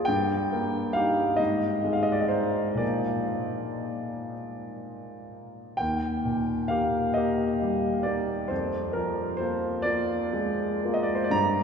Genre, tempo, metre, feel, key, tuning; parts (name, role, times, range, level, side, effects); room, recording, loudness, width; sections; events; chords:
classical, romantic nocturne for solo piano; 38-46 BPM (dotted quarters); 12/8; rubato; A4 = 440 Hz
warm concert grand piano; solo; 0.0-11.6 s; Eb2 to Bb5; -25 LUFS; equal
wet cathedral reverb, RT60 6.3 s; heard from further back in the room; -24 LUFS; side -6 dB against mid
0.0-11.6 A section
0.1 Eb/G; 1.4 Ab5; 2.8 Bb; 5.8 Eb; 8.5 Bb7/F